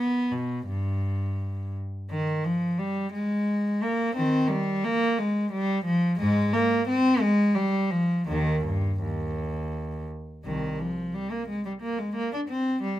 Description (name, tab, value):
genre	classical, baroque-style suite movement for unaccompanied cello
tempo	86 BPM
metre	3/4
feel	uneven beats, rubato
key	Eb major from 6.2 s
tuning	A4 = 439 Hz
part	rich cello	solo	0.0-13.0 s	C2 to D4	-24 LUFS	equal	none
room	light reverb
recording	minimal, uncompressed stereo recording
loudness	-24 LUFS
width	side -13 dB against mid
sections	0.0-10.4 A section; 10.4-13.0 A section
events	none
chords	none